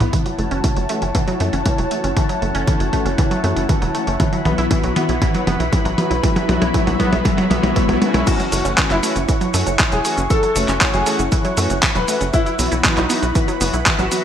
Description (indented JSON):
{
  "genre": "italo disco",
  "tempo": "118 BPM",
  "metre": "4/4",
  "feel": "straight",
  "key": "F# minor",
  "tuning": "A4 = 440 Hz",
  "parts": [
    { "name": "warm grand piano", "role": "melody", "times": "0.0-0.1, 8.3-14.2 s", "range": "D#4 to B4", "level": "-23 LUFS", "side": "equal", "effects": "ensemble chorus, digital delay" },
    { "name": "warm analog pad", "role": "sustained chords", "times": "0.0-14.2 s", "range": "E4 to C#6", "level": "-24 LUFS", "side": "left 1 dB", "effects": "wide subtle chorus" },
    { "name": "wide unison pluck", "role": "arpeggios", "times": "0.0-14.2 s", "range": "E3 to E4", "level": "-24 LUFS", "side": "right 2 dB", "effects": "cassette tape, digital delay" },
    { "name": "tight sequencer bass", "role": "bass", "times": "0.0-14.1 s", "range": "E1 to F#2", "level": "-22 LUFS", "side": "equal", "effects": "none" },
    { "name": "dusty soul sampler-style drum kit", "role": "drums", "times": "0.0-14.2 s", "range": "cabasa, crash cymbal, handclaps, hi-hat, toms", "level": "-21 LUFS", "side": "equal", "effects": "none" },
    { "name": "electronic kick drum", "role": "drums", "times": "0.1-14.0 s", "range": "none", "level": "-20 LUFS", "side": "equal", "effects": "none" },
    { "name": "analog synth brass", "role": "stabs", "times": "0.4-14.2 s", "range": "E3 to F#4", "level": "-25 LUFS", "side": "left 2 dB", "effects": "chorus, digital delay" }
  ],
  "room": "wet lush hall reverb, RT60 1.6 s",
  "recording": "bright 1980s-style digital production",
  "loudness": "-15 LUFS",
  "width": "side -9 dB against mid",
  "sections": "0.1-8.3 A section; 8.3-14.2 B section",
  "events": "drum fill 0.1-8.3; filter sweep on analog polysynth 0.1-8.3",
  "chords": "0.1 F#m7; 4.2 Bsus4; 8.3 F#m7; 12.3 Bsus4"
}